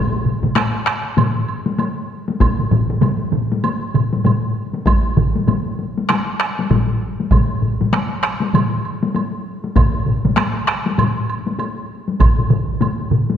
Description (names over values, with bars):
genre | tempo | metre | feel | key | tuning
japanese traditional, taiko drum ensemble | 98 BPM | 4/4 | swing 60% on 16ths | none | none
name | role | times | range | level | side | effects
taiko ensemble | percussion | 0.2-13.3 s | none | -21 LUFS | left 3 dB | none
taiko ensemble | percussion | 0.2-13.3 s | none | -21 LUFS | right 4 dB | none
taiko ensemble | percussion | 0.4-13.4 s | none | -22 LUFS | left 4 dB | none
woodblock | percussion | 0.6-13.0 s | none | -28 LUFS | right 4 dB | none
taiko ensemble | percussion | 2.4-12.4 s | none | -19 LUFS | right 1 dB | none
room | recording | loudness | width
wet scoring stage reverb, RT60 1.9 s | dark, warm production | -16 LUFS | side -9 dB against mid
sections
0.0-13.4 A section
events
none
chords
none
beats
0.56 1.17 1.79 | 2.40 3.02 3.63 4.25 | 4.86 5.47 6.09 6.70 | 7.31 7.93 8.54 9.15 | 9.76 10.37 10.98 11.59 | 12.20 12.81